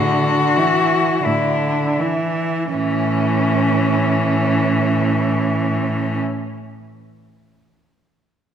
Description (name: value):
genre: classical, lyrical piece for cello ensemble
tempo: 40 BPM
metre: 3/4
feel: rubato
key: A major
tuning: A4 = 440 Hz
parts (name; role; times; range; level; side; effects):
- rich cello; melody; 0.0-6.2 s; C#4 to F#4; -21 LUFS; left 5 dB; none
- rich cello; second line; 0.0-6.2 s; C#4 to E4; -23 LUFS; right 7 dB; none
- rich cello; accompaniment; 0.0-6.2 s; D3 to E3; -21 LUFS; left 1 dB; none
- clear cello; bass; 0.0-6.2 s; A2; -23 LUFS; right 1 dB; none
room: moderate scoring stage reverb, RT60 1.9 s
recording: none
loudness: -16 LUFS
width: side -8 dB against mid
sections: 0.0-2.8 A section; 2.8-7.3 B section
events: slowing down 0.0-2.8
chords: 0.0 E7(no3)/A; 2.8 A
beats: 1.25 | 2.75 4.27 5.79